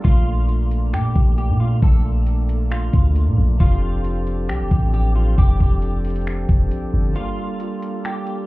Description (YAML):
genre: hip hop, atmospheric cloud-rap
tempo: 135 BPM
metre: 4/4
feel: half-time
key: unclear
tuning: A4 = 440 Hz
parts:
  - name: semi-hollow electric guitar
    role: melody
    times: 0.0-8.5 s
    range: F4 to A4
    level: -31 LUFS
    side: equal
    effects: ensemble chorus, digital delay
  - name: pipe organ, flutes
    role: sustained chords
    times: 0.0-8.5 s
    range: F3 to A4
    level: -27 LUFS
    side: right 2 dB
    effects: sidechain pumping
  - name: warm 808-style bass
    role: bass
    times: 0.0-7.1 s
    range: F1 to Bb2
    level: -18 LUFS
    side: equal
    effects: none
  - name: smooth R&B drum kit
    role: drums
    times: 0.0-8.4 s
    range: finger snaps, hi-hat, kick drum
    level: -17 LUFS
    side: equal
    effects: none
room: little or no reverb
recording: heard muffled through a wall, club reverb, EQ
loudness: -16 LUFS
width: side -19 dB against mid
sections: 0.0-8.5 A section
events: break 7.2-8.5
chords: 0.0 Bbmaj7; 3.6 F69; 7.2 Gm9